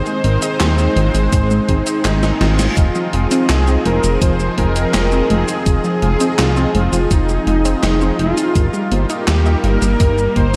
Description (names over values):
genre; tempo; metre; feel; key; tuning
synthwave; 83 BPM; 4/4; straight; F minor; A4 = 444 Hz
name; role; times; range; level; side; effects
soft supersaw; melody; 0.0-10.6 s; Eb4 to C5; -23 LUFS; equal; tape echo
lush unison pad; sustained chords; 0.0-10.6 s; F3 to Ab4; -25 LUFS; equal; chorus, phaser
mellow synth brass; stabs; 0.0-10.5 s; C4 to F5; -28 LUFS; equal; chorus, tape echo
analog pluck; arpeggios; 0.1-10.4 s; Eb3 to Ab4; -26 LUFS; equal; chorus, tape echo
gated 80s digital drum machine; drums; 0.1-10.5 s; handclaps, hi-hat, shaker, snare drum; -26 LUFS; equal; gated reverb, gated reverb snare
chorused synth bass; bass; 0.2-10.6 s; F1 to Eb2; -19 LUFS; equal; none
electronic kick drum; drums; 1.3-10.5 s; none; -18 LUFS; equal; none
reverse cymbal; sound effects; 2.3-2.8 s; none; -35 LUFS; equal; none
room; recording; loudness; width
moderate cathedral reverb, RT60 4.8 s; dreamy mix soaked in reverb; -15 LUFS; mono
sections
0.0-10.6 A section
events
drum fill 2.0-2.8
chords
0.0 Ab; 2.8 Fm7; 8.6 Eb/G